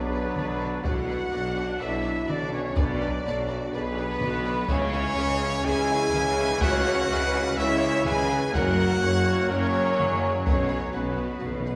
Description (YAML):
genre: cinematic, epic orchestral film score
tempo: 125 BPM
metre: 4/4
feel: straight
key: B dorian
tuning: A4 = 439 Hz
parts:
  - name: clear studio violin section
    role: melody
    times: 0.0-11.8 s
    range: B4 to G#5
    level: -39 LUFS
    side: equal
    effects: none
  - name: concert flute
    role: second line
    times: 0.0-11.8 s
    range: B4 to G#5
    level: -37 LUFS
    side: equal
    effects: none
  - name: rich studio viola section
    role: accompaniment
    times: 0.0-11.8 s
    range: D4 to C#5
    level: -37 LUFS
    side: equal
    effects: none
  - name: mellow French horn section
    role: sustained chords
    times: 0.0-11.8 s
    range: B3 to G#4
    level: -31 LUFS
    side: equal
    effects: none
  - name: warm trombone section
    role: sustained chords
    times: 0.0-11.8 s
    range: E3 to D4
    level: -36 LUFS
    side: equal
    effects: none
  - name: clear trumpet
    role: stabs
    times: 0.0-11.8 s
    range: B4 to G#5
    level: -34 LUFS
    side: equal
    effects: none
  - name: clear tuba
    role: bass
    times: 0.0-11.8 s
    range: F#1 to C#2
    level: -35 LUFS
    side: equal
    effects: none
  - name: rich symphonic cello section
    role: bass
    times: 0.0-11.8 s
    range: F#2 to C#3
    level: -36 LUFS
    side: equal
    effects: none
  - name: rich symphonic double bass section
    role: bass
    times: 0.0-11.8 s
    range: F#1 to C#2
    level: -35 LUFS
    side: equal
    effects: none
  - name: rich chamber violin section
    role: second line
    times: 0.1-11.7 s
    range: G#4 to F#5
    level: -43 LUFS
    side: equal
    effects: none
  - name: taiko ensemble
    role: drums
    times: 0.4-10.9 s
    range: none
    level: -33 LUFS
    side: equal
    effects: none
  - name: timpani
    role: percussion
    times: 8.5-11.7 s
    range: F#2 to B2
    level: -39 LUFS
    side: equal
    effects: none
room: wet concert hall reverb, RT60 2.1 s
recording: small room ambience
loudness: -25 LUFS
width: mono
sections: 0.0-11.8 A section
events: timpani fill 10.5-11.8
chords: 0.0 Bm; 4.7 C#m; 8.5 F#; 10.5 B5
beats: 0.37 | 0.85 1.33 1.81 2.29 | 2.77 3.25 3.73 4.21 | 4.70 5.18 5.66 6.14 | 6.62 7.10 7.58 8.06 | 8.54 9.02 9.50 9.98 | 10.46 10.94 11.43